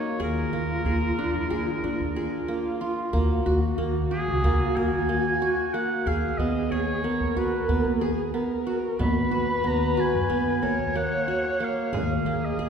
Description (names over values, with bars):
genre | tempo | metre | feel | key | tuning
contemporary instrumental, chamber music in an uneven meter | 184 BPM (eighths) | 9/8 | straight | unclear | A4 = 438 Hz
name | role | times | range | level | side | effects
clear oboe | melody | 0.0-12.7 s | Ab4 to B5 | -30 LUFS | equal | none
dark viola | second line | 0.0-12.7 s | Eb4 to C#5 | -29 LUFS | equal | none
qanun | arpeggios | 0.0-12.7 s | Bb3 to Bb4 | -28 LUFS | right 2 dB | none
upright bass | bass | 0.2-12.7 s | Db2 to F#2 | -28 LUFS | equal | none
frame drum | percussion | 9.0-12.2 s | none | -36 LUFS | right 3 dB | none
room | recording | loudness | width
wet concert hall reverb, RT60 2.0 s | heard from further back in the room | -23 LUFS | side -7 dB against mid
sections
0.0-12.7 A section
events
none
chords
0.2 Bb7/Eb; 3.1 Gbadd9; 6.1 Abm9/Eb; 11.9 Bb7(no3)/Eb